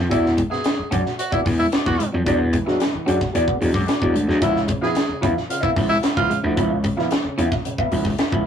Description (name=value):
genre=funk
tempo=111 BPM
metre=4/4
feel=straight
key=unclear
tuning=A4 = 440 Hz
part: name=electric guitar at the edge of break-up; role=riff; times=0.0-8.2 s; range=F3 to Db4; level=-29 LUFS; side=right 1 dB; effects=tremolo
part: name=gritty slap bass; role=bass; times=0.0-8.4 s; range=Db2 to F#2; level=-22 LUFS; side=left 1 dB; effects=overdrive
part: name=breathy tenor saxophone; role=second line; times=0.1-6.4 s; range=E4 to G#4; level=-23 LUFS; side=right 1 dB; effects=none
part: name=electric guitar at the edge of break-up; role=accompaniment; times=0.1-8.4 s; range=F4 to F5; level=-26 LUFS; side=equal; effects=wah
part: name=tight funk drum kit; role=drums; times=0.1-8.4 s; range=hi-hat, kick drum, snare drum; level=-23 LUFS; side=equal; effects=none
part: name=clear upright piano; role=stabs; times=2.3-8.4 s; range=Db3 to E4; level=-24 LUFS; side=equal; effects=none
room=moderate booth ambience, RT60 0.3 s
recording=rough rehearsal-room recording, tube saturation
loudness=-18 LUFS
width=side -8 dB against mid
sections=0.0-8.5 A section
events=break 0.0-2.3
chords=0.1 E9; 4.4 Db7#9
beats=| 0.11 0.65 1.19 1.73 | 2.27 2.80 3.34 3.88 | 4.42 4.96 5.50 6.04 | 6.57 7.11 7.65 8.19